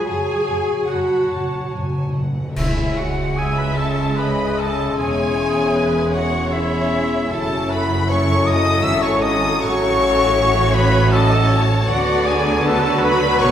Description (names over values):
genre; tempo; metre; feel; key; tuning
classical, slow romantic movement for symphony orchestra; 71-81 BPM; 3/4; rubato; C# minor; A4 = 440 Hz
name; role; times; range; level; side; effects
silver concert flute; second line; 0.0-13.5 s; E5 to E6; -26 LUFS; left 1 dB; none
warm studio violin section; second line; 0.0-13.5 s; G#3 to G#5; -27 LUFS; left 3 dB; none
clear studio viola section; accompaniment; 0.0-13.5 s; F#4 to E5; -25 LUFS; right 1 dB; none
warm bassoon; accompaniment; 0.0-2.2 s; F#3; -30 LUFS; right 1 dB; none
mellow French horn section; sustained chords; 0.0-13.5 s; A3 to G#4; -24 LUFS; left 4 dB; none
rich studio cello section; bass; 0.0-13.5 s; E2 to F#3; -26 LUFS; right 1 dB; none
rich studio violin section; melody; 0.1-13.5 s; E5 to E6; -27 LUFS; left 3 dB; none
warm clarinet; second line; 0.1-13.5 s; E4 to G#5; -26 LUFS; left 4 dB; none
warm oboe; second line; 0.1-13.5 s; E4 to E5; -27 LUFS; right 2 dB; none
dark chamber double bass section; bass; 0.1-13.5 s; E1 to F#2; -23 LUFS; right 2 dB; none
cymbal swell, clash cymbals and concert bass drum; percussion; 0.1-4.1 s; none; -28 LUFS; equal; none
timpani; percussion; 0.1-3.8 s; F#2 to C#3; -26 LUFS; equal; none
clear trombone section; sustained chords; 2.5-13.5 s; C#3 to G#3; -26 LUFS; right 2 dB; none
room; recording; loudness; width
wet recital hall reverb, RT60 1.3 s; recorded in a church or concert hall; -16 LUFS; side -9 dB against mid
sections
0.0-2.6 A section; 2.6-13.5 B section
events
timpani fill 0.1-2.6; band accent 2.6-3.4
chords
0.1 F#m; 2.6 C#m; 5.0 C#m/E; 7.3 F#m7; 9.6 F#m/A; 11.9 Bm/D